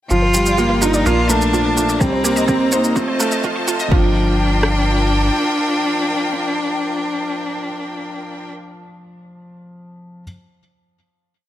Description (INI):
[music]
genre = piano and strings electronica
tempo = 126 BPM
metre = 4/4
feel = straight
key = G minor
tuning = A4 = 443 Hz
[part]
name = rich cello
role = melody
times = 0.1-8.5 s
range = A3 to F4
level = -20 LUFS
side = equal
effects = none
[part]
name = rich studio string section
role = sustained chords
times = 0.1-8.5 s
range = D4 to Bb5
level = -25 LUFS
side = left 1 dB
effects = sidechain pumping
[part]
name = analog pluck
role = arpeggios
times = 0.1-4.1 s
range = F4 to Eb5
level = -24 LUFS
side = right 4 dB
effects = chorus, sidechain pumping, tape echo
[part]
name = felt-muted upright piano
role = riff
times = 0.1-10.2 s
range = F3 to Eb4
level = -22 LUFS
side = equal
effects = none
[part]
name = round analog bass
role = bass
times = 0.1-5.3 s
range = F1 to C2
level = -20 LUFS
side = equal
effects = sidechain pumping
[part]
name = shaker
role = drums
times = 0.1-3.9 s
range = none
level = -24 LUFS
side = right 1 dB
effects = none
[part]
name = deep house drum kit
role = drums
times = 2.0-4.7 s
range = kick drum, rim click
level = -18 LUFS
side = equal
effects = none
[sound]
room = light reverb, small room ambience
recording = high-pass filter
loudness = -15 LUFS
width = side -12 dB against mid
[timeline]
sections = 0.1-3.9 build; 3.9-7.7 final chord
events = build-up 0.1-3.9; filter sweep on synth arpeggio sound 0.1-3.9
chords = 0.1 Gm7; 1.1 Bbmaj7; 2.0 Cm7; 3.0 F7; 3.9 Gm7